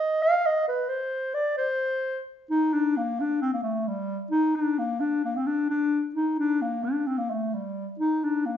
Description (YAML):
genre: klezmer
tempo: 131 BPM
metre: 2/4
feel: straight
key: unclear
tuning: A4 = 440 Hz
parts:
  - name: dark clarinet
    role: solo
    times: 0.0-8.6 s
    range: G3 to F5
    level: -24 LUFS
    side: left 1 dB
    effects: none
room: wet large studio reverb, RT60 0.9 s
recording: band playing live in one room, nothing above 7.8 kHz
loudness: -24 LUFS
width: side -9 dB against mid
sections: 0.0-2.5 A section; 2.5-8.6 B section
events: none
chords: none